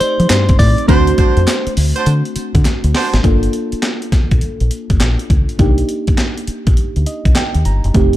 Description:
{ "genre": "R&B, new jack swing", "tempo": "102 BPM", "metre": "4/4", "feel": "swing 64% on 16ths", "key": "G minor", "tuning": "A4 = 440 Hz", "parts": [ { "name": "direct-recorded clean electric guitar", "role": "melody", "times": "0.0-1.7 s", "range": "C5 to D5", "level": "-19 LUFS", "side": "equal", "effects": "phaser, digital delay" }, { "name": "mellow FM electric piano", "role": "accompaniment", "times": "0.0-8.2 s", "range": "A3 to Bb5", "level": "-20 LUFS", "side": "right 1 dB", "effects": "chorus, phaser" }, { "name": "deep dub fingered electric bass", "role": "bass", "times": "0.0-8.2 s", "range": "F1 to F3", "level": "-14 LUFS", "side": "equal", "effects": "none" }, { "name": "breakbeat sampler-style drum kit", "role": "drums", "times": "0.0-8.2 s", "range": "handclaps, hi-hat, kick drum, snare drum, tambourine", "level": "-14 LUFS", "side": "equal", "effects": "none" }, { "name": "group handclap", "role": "percussion", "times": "0.3-2.8 s", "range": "none", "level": "-33 LUFS", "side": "right 3 dB", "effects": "none" }, { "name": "clear horn section", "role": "stabs", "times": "0.9-3.2 s", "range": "D4 to C5", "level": "-22 LUFS", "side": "right 4 dB", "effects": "digital delay" } ], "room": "digital ambience", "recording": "dark, warm production", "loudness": "-12 LUFS", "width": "side -14 dB against mid", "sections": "0.0-3.2 A section; 3.2-8.2 B section", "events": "drum fill 2.7-3.2; FM electric piano fill 6.8-7.9", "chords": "0.0 F7 (rootless); 0.9 D7; 3.2 Gm7; 5.6 Cm7" }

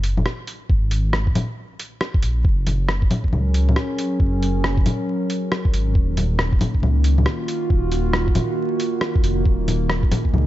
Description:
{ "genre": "future garage", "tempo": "137 BPM", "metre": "4/4", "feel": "swing 63% on 16ths", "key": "Eb minor", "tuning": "A4 = 440 Hz", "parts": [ { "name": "dark detuned saw bass", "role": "bass", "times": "0.0-10.5 s", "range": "Eb1 to Db2", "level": "-20 LUFS", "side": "equal", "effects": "tube saturation, sidechain pumping" }, { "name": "lo-fi sampler-style drum kit", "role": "drums", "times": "0.0-10.4 s", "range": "bongos, cabasa, hi-hat, rim click", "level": "-24 LUFS", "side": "left 1 dB", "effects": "small room ambience" }, { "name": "electronic kick drum", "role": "drums", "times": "0.7-10.3 s", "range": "none", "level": "-18 LUFS", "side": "equal", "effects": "small room ambience" }, { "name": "warbly tape-like pad", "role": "sustained chords", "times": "3.2-10.5 s", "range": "Eb3 to Bb4", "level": "-24 LUFS", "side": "right 1 dB", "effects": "chorus, built-in reverb, sidechain pumping" } ], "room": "light reverb, digital ambience", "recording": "dark, warm production, vinyl crackle, nothing above 7.7 kHz, faint mains hum", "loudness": "-18 LUFS", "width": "side -14 dB against mid", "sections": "0.0-10.5 A section", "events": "none", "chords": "0.0 Absus2; 2.4 Gb; 5.9 Ebmadd9" }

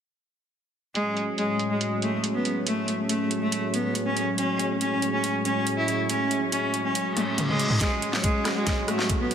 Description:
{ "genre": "heavy wobble dubstep", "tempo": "140 BPM", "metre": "4/4", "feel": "half-time", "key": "F# minor", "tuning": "A4 = 439 Hz", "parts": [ { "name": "clear cello", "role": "melody", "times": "1.0-9.3 s", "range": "G#3 to E4", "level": "-26 LUFS", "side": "equal", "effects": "tape echo" }, { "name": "lush unison pad", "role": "sustained chords", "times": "1.0-9.3 s", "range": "A2 to C#4", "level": "-29 LUFS", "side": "equal", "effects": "chorus, sidechain pumping" }, { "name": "dubstep drum kit", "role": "drums", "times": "1.0-9.3 s", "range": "hi-hat, rim click, snare drum, toms", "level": "-29 LUFS", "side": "equal", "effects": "high-pass filter on hats, low-pass filter on hats, small room ambience, high-pass filter on toms, low-pass filter on toms, high-pass filter on snare, low-pass filter on snare" }, { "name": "reverse cymbal and riser", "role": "sound effects", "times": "7.1-9.3 s", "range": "none", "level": "-33 LUFS", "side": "left 2 dB", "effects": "none" }, { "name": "electronic kick drum", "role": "drums", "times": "7.8-9.2 s", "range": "none", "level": "-27 LUFS", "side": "equal", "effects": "small room ambience" }, { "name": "airy breathy pad", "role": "texture", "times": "7.8-9.3 s", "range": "F#4 to G#5", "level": "-34 LUFS", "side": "right 1 dB", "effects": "chorus, sidechain pumping" } ], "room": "wet huge ambient reverb, RT60 4.7 s", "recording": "dreamy mix soaked in reverb", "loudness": "-23 LUFS", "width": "side -8 dB against mid", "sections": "1.0-7.8 A section; 7.8-9.3 B section", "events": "filter sweep on drum 1.0-7.8; reverse cymbal 7.1-7.8; drum fill 7.2-7.8, 7.8-9.3; build-up 7.8-9.3", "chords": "1.0 F#madd9" }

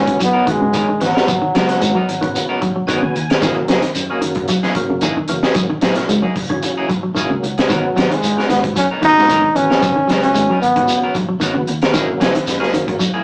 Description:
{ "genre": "afrobeat", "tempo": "113 BPM", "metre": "4/4", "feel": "straight", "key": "G# minor", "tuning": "A4 = 439 Hz", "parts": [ { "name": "bright trombone", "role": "melody", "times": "0.0-3.1, 7.4-11.1 s", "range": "F#3 to D#4", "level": "-18 LUFS", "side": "equal", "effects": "none" }, { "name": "percussive tonewheel organ", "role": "accompaniment", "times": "0.0-13.0 s", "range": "C#3 to G#5", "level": "-26 LUFS", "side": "equal", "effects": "overdrive, chorus vibrato, stopped rotary speaker" }, { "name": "electric guitar at the edge of break-up", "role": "arpeggios", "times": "0.0-13.2 s", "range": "C#3 to G#3", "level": "-23 LUFS", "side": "equal", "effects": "none" }, { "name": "fingered electric bass", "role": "bass", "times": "0.0-13.0 s", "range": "E1 to G#2", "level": "-28 LUFS", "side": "equal", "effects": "none" }, { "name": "electric guitar at the edge of break-up", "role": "stabs", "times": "0.1-13.2 s", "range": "E3 to A#4", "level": "-27 LUFS", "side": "equal", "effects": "none" }, { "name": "crunchy breakbeat drum kit", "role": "drums", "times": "0.1-13.1 s", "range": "hi-hat, kick drum, snare drum", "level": "-22 LUFS", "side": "equal", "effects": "none" }, { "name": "shekere", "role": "percussion", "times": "0.2-13.1 s", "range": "none", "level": "-30 LUFS", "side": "equal", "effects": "none" } ], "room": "moderate small room reverb, RT60 0.6 s", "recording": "rough rehearsal-room recording, tube saturation, small speaker sound", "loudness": "-16 LUFS", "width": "mono", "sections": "0.0-13.2 A section", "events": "tonewheel organ fill 2.6-3.4", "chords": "0.0 G#m9; 3.4 F#13; 7.7 G#m9; 11.9 F#13" }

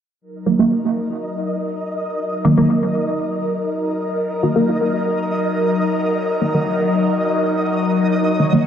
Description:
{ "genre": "techno", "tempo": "free time", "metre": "none", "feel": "none", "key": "Eb minor", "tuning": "A4 = 440 Hz", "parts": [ { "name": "airy breathy pad", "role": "sustained chords", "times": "0.3-8.7 s", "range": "Gb3 to Db5", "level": "-20 LUFS", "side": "left 1 dB", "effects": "chorus, phaser" }, { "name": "flickering grainy texture", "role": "texture", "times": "0.8-8.7 s", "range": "Eb5", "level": "-24 LUFS", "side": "equal", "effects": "built-in reverb" }, { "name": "filtered dub chord stab", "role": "stabs", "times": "0.5-8.7 s", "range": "Eb3 to Bb3", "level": "-17 LUFS", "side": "right 1 dB", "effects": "phaser, dub echo" } ], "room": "wet echo chamber reverb, RT60 1.8 s", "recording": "dark, warm production", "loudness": "-16 LUFS", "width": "side -9 dB against mid", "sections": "0.2-8.7 A section", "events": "filter sweep on synth stab 0.2-8.7", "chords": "0.2 Ebm" }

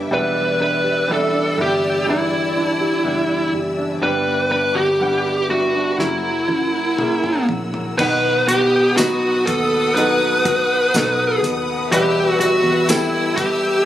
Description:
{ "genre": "pop ballad", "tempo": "61 BPM", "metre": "4/4", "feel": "straight", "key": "E minor", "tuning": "A4 = 439 Hz", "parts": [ { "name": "clear grand piano", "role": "accompaniment", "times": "0.0-13.9 s", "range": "G2 to F#5", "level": "-24 LUFS", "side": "equal", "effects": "none" }, { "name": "warm symphonic string section", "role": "sustained chords", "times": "0.0-13.9 s", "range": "A#4 to E6", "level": "-26 LUFS", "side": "left 2 dB", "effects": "none" }, { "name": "nylon-string guitar", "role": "arpeggios", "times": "0.0-13.9 s", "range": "E2 to G4", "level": "-26 LUFS", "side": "equal", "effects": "none" }, { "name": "vintage muted fingered electric bass", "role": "bass", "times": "0.0-13.9 s", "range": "E1 to E2", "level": "-31 LUFS", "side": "equal", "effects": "none" }, { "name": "fuzz lead guitar", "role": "melody", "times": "0.1-13.8 s", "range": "E4 to B4", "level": "-18 LUFS", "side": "equal", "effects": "distortion" }, { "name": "damped 70s drum kit", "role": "drums", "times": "6.0-13.6 s", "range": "crash cymbal, hi-hat, kick drum, snare drum, toms", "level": "-24 LUFS", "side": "equal", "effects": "none" }, { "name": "tambourine", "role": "percussion", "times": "9.0-13.1 s", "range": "none", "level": "-28 LUFS", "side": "right 2 dB", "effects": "none" } ], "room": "light reverb", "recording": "recorded on a phone in the room, club reverb, compression", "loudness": "-16 LUFS", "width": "side -12 dB against mid", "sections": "0.0-8.0 A section; 8.0-13.9 B section", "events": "drum fill 6.0-8.0", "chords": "0.1 Em7; 4.0 G; 6.0 F#7; 8.0 B; 11.9 Em" }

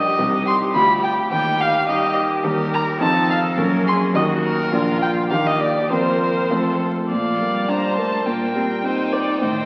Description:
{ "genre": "quick classical-period movement for piano quartet", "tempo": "105 BPM", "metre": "2/4", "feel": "straight", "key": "Bb major", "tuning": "A4 = 440 Hz", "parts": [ { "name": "warm violin", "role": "melody", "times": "0.0-9.7 s", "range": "Bb4 to C6", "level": "-23 LUFS", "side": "equal", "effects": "none" }, { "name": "rich cello", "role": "second line", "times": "0.0-9.7 s", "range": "Eb3 to Bb4", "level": "-29 LUFS", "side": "equal", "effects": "none" }, { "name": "clear grand piano", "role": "accompaniment", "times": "0.0-9.7 s", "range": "Bb1 to C5", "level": "-24 LUFS", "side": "equal", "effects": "none" }, { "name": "rich viola", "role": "accompaniment", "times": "0.0-9.7 s", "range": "Db4 to D5", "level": "-29 LUFS", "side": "equal", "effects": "none" } ], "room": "wet concert hall reverb, RT60 2.2 s", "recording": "very old 78 rpm record, vinyl crackle", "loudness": "-19 LUFS", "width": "mono", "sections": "0.0-7.1 A section; 7.1-9.7 B section", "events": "none", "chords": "0.2 Cm; 0.7 G7/D; 1.3 Eb; 3.0 F7; 3.6 Gb; 4.1 Ebm; 4.7 Bb; 5.3 Ebmaj7; 5.9 Fsus4; 6.5 F; 7.1 Bb; 8.3 Cm7/Bb" }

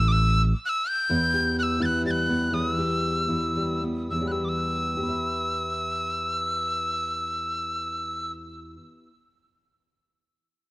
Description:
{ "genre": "indie folk with a building arrangement", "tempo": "104-132 BPM", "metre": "3/4", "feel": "straight", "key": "E minor", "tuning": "A4 = 440 Hz", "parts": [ { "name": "breathy bright tin whistle", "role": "melody", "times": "0.0-8.3 s", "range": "D6 to A6", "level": "-26 LUFS", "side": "equal", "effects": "digital delay" }, { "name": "fingered electric bass", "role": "bass", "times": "0.0-0.5 s", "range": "A1", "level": "-20 LUFS", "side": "equal", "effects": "none" }, { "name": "fingerpicked steel-string acoustic guitar", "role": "accompaniment", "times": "1.1-9.1 s", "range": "E2 to E5", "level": "-28 LUFS", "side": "equal", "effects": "none" } ], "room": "light reverb", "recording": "worn, warbling old tape, cassette tape, warbly pitch drift", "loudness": "-24 LUFS", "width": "side -20 dB against mid", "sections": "0.0-1.1 A section; 1.1-4.1 B section; 4.1-7.6 C section", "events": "slowing down 1.1-4.1", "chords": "0.0 A5; 1.1 Em" }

